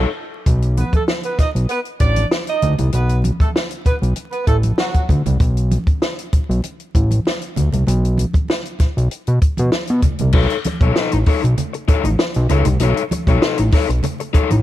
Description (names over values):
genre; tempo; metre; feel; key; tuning
funk; 97 BPM; 4/4; straight; B mixolydian; A4 = 440 Hz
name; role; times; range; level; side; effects
crunchy overdriven guitar; accompaniment; 0.0-0.1, 10.3-14.5 s; D#4 to D#5; -21 LUFS; left 7 dB; none
fat analog bass; bass; 0.0-14.6 s; A1 to B2; -16 LUFS; equal; none
compact cocktail drum kit; drums; 0.5-14.6 s; crash cymbal, hi-hat, kick drum, snare drum; -18 LUFS; equal; none
congas; percussion; 0.5-14.6 s; none; -26 LUFS; right 3 dB; none
warm horn section; second line; 0.8-5.0 s; F#3 to D#5; -23 LUFS; right 3 dB; none
room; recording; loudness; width
little or no reverb; dark, warm production, vinyl crackle; -15 LUFS; side -14 dB against mid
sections
0.5-10.3 A section; 10.3-14.6 B section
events
band accent 0.0-0.5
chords
0.5 B7(no3); 10.3 B9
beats
| 0.46 1.08 1.70 2.31 | 2.93 3.55 4.17 4.78 | 5.40 6.02 6.64 7.26 | 7.88 8.49 9.11 9.73 | 10.34 10.96 11.58 12.19 | 12.81 13.42 14.04